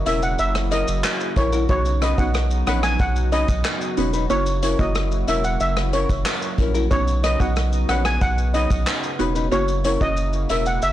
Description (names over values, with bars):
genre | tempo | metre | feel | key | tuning
dancehall | 92 BPM | 4/4 | straight | B major | A4 = 440 Hz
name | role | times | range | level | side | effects
warm analog pad | sustained chords | 0.0-10.9 s | C#3 to F#4 | -30 LUFS | equal | chorus, sidechain pumping
saturated sub bass | bass | 0.0-10.9 s | E1 to B1 | -22 LUFS | equal | none
steel pan | melody | 0.1-10.9 s | C#5 to G#5 | -24 LUFS | right 1 dB | digital delay
nylon-string guitar | arpeggios | 0.1-10.6 s | C#4 to B4 | -27 LUFS | left 7 dB | none
unplugged drum kit | drums | 0.1-10.9 s | handclaps, hi-hat, kick drum, rim click, shaker | -25 LUFS | equal | vintage 12-bit sampler grit, soft clipping on snare
glassy wavetable pluck | accompaniment | 1.7-10.1 s | A#3 to F#4 | -27 LUFS | right 2 dB | chorus, sidechain pumping
room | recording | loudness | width
studio reverb | blown-out, overdriven recording, overdrive | -18 LUFS | side -13 dB against mid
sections
0.0-10.9 A section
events
none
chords
0.0 F#7; 1.7 Badd9; 4.3 F#7; 6.9 Badd9; 9.5 F#7